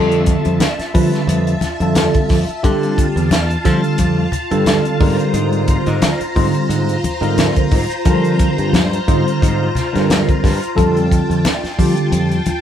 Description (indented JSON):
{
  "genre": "electric jazz fusion",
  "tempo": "88 BPM",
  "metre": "4/4",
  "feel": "swing 55% on 16ths",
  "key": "F major",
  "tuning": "A4 = 440 Hz",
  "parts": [
    { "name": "tine electric piano", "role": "accompaniment", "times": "0.0-12.4 s", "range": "D3 to C5", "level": "-17 LUFS", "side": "right 1 dB", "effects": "medium stereo tremolo, phaser" },
    { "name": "string machine, violins", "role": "sustained chords", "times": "0.0-12.6 s", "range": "F4 to Bb5", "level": "-22 LUFS", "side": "left 1 dB", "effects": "ensemble chorus" },
    { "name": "modern bright fingered electric bass", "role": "bass", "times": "0.0-12.5 s", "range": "E2 to F3", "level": "-18 LUFS", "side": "equal", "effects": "none" },
    { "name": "tight funk drum kit", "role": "drums", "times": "0.1-12.6 s", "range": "hi-hat, kick drum, snare drum", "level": "-18 LUFS", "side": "equal", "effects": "none" },
    { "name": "congas", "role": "percussion", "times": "0.3-12.6 s", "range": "none", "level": "-21 LUFS", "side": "left 3 dB", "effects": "none" }
  ],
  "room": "moderate studio ambience, RT60 0.4 s",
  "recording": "band playing live in one room",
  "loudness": "-13 LUFS",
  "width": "side -9 dB against mid",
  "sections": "0.0-12.6 A section",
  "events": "none",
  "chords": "0.0 Fmaj9; 5.0 Abmaj9; 10.8 Fadd9"
}